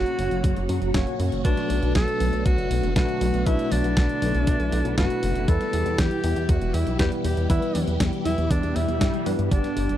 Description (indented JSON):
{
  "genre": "italo disco",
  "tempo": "119 BPM",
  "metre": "4/4",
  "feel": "straight",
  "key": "unclear",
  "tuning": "A4 = 437 Hz",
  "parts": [
    { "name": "breathy alto saxophone", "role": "melody", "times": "0.0-10.0 s", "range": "D4 to A4", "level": "-28 LUFS", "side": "equal", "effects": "tape echo" },
    { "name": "phased string machine", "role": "sustained chords", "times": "0.0-10.0 s", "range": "A#2 to G4", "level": "-30 LUFS", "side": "equal", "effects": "ensemble chorus, phaser" },
    { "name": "barky tine electric piano", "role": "stabs", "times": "0.0-10.0 s", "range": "G2 to D5", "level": "-30 LUFS", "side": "left 2 dB", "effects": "fast stereo tremolo, vintage 12-bit sampler grit, low-pass filter" },
    { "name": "chorused synth bass", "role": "bass", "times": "0.0-10.0 s", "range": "E1 to G2", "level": "-25 LUFS", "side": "equal", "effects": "none" },
    { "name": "clean 12-bit digital drum machine", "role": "drums", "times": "0.1-10.0 s", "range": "congas, hi-hat, snare drum", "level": "-30 LUFS", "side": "equal", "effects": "overdrive" },
    { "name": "electronic kick drum", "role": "drums", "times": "0.4-9.6 s", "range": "none", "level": "-23 LUFS", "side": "equal", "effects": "overdrive" },
    { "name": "swell", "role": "sound effects", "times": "8.7-9.5 s", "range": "none", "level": "-31 LUFS", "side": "left 3 dB", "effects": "none" }
  ],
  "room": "light reverb",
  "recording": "dry, close 1970s-style studio recording",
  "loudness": "-20 LUFS",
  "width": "side -12 dB against mid",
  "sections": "0.0-10.0 A section",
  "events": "swell 8.7-9.5",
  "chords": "0.0 F#; 1.4 Bm7; 5.5 Em"
}